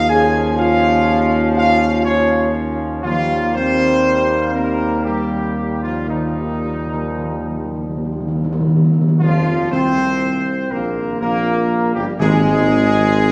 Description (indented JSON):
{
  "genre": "classical, ceremonial fanfare",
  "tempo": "59 BPM",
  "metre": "3/4",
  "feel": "uneven beats",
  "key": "unclear",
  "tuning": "A4 = 441 Hz",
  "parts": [
    { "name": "mellow trumpet section", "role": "melody", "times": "0.0-13.3 s", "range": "Eb4 to Ab5", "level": "-22 LUFS", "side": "equal", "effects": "none" },
    { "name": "mellow French horn section", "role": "sustained chords", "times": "0.0-13.3 s", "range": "Eb3 to Ab4", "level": "-25 LUFS", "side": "equal", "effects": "none" },
    { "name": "warm trombone section", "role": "sustained chords", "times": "0.0-13.3 s", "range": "F3 to Db4", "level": "-26 LUFS", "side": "equal", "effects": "none" },
    { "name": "mellow tuba", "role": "bass", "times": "0.0-13.3 s", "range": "F1 to Eb2", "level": "-22 LUFS", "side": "equal", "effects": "none" },
    { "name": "timpani", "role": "percussion", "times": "3.0-13.3 s", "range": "Eb3", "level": "-22 LUFS", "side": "equal", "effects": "none" }
  ],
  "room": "wet church reverb, RT60 2.9 s",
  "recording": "heard from further back in the room",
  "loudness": "-17 LUFS",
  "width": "mono",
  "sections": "0.0-9.2 A section; 9.2-13.3 B section",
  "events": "timpani fill 6.1-9.2",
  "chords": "0.1 Db/Eb; 3.1 Eb; 6.1 Ebadd9; 9.2 Fsus24; 12.2 N.C."
}